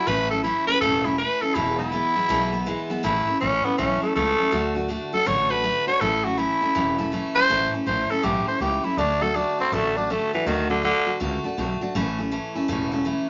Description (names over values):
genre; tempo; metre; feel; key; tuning
rockabilly; 162 BPM; 4/4; swing 64% on 8ths; A major; A4 = 439 Hz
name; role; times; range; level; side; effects
growling tenor saxophone; melody; 0.0-11.2 s; D3 to C#5; -24 LUFS; equal; none
picked steel-string acoustic guitar; accompaniment; 0.0-13.3 s; E2 to F#4; -29 LUFS; equal; none
upright bass; bass; 0.1-13.1 s; E1 to D2; -33 LUFS; equal; none
room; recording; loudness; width
moderate studio ambience, RT60 0.5 s; nothing above 7.5 kHz; -23 LUFS; mono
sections
0.0-3.0 A section; 3.0-13.3 B section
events
tenor saxophone solo 3.0-13.3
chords
0.1 A; 1.6 E; 3.0 A; 4.5 D; 6.0 A; 9.0 D; 11.9 A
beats
| 0.07 0.44 0.81 1.18 | 1.55 1.92 2.29 2.67 | 3.04 3.41 3.78 4.15 | 4.52 4.90 5.27 5.64 | 6.01 6.38 6.75 7.12 | 7.50 7.87 8.24 8.61 | 8.98 9.35 9.72 10.09 | 10.46 10.83 11.20 11.57 | 11.94 12.31 12.69 13.05